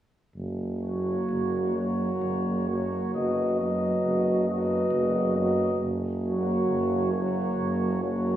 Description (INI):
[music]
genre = classical, hymn-like piece for brass band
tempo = 64-69 BPM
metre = 3/4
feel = rubato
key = F# major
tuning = A4 = 440 Hz
[part]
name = clear tuba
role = bass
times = 0.4-8.4 s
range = F#1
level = -28 LUFS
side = right 1 dB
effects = none
[part]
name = warm cornet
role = melody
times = 0.8-8.4 s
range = C#5 to D#5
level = -33 LUFS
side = left 3 dB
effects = none
[part]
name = warm French horn section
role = second line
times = 0.8-8.4 s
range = F#4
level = -32 LUFS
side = right 3 dB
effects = none
[part]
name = bright trombone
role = accompaniment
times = 0.8-8.4 s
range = F#3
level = -32 LUFS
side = right 2 dB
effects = none
[part]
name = warm euphonium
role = accompaniment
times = 0.8-8.4 s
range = A#3 to B3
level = -32 LUFS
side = left 1 dB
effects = none
[sound]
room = wet concert hall reverb, RT60 1.7 s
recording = heard from further back in the room, small room ambience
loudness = -24 LUFS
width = side -11 dB against mid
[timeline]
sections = 0.4-8.4 A section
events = none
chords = 0.4 F#; 3.1 B/F#; 5.8 F#